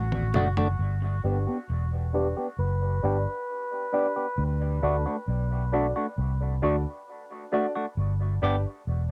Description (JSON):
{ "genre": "dub reggae", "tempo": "67 BPM", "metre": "4/4", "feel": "straight", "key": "G major", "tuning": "A4 = 439 Hz", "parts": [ { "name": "clean electric guitar", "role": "riff", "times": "0.0-0.6 s", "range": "F#2 to A2", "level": "-44 LUFS", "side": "equal", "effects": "none" }, { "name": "vintage muted fingered electric bass", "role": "bass", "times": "0.0-9.1 s", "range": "E1 to D2", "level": "-29 LUFS", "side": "equal", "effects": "none" }, { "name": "mellow tonewheel organ", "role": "accompaniment", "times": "0.1-0.7 s", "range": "D2 to D4", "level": "-34 LUFS", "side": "equal", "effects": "slow rotary speaker" }, { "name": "toms", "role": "drums", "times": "0.1-0.8 s", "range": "none", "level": "-34 LUFS", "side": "equal", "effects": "cassette tape" }, { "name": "semi-hollow electric guitar", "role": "accompaniment", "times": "0.3-8.6 s", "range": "A3 to G4", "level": "-33 LUFS", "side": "equal", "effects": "phaser, low-pass filter, dub echo" }, { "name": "congas", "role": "percussion", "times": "0.3-0.8 s", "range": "none", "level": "barely audible", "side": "none", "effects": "none" }, { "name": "clear upright piano", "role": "stabs", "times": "1.2-8.6 s", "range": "D4 to D5", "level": "-35 LUFS", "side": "equal", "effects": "low-pass filter, dub echo" }, { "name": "melodica", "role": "melody", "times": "2.6-4.4 s", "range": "B4", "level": "-38 LUFS", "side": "equal", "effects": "low-pass filter, dub echo" } ], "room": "light reverb", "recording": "home recording on cassette", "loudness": "-27 LUFS", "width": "mono", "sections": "0.8-9.1 A section", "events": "break 0.0-0.8, 0.8-9.1; drum fill 0.0-0.8; filter sweep 0.8-9.1", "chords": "0.0 D; 0.8 G; 4.4 D; 8.0 G" }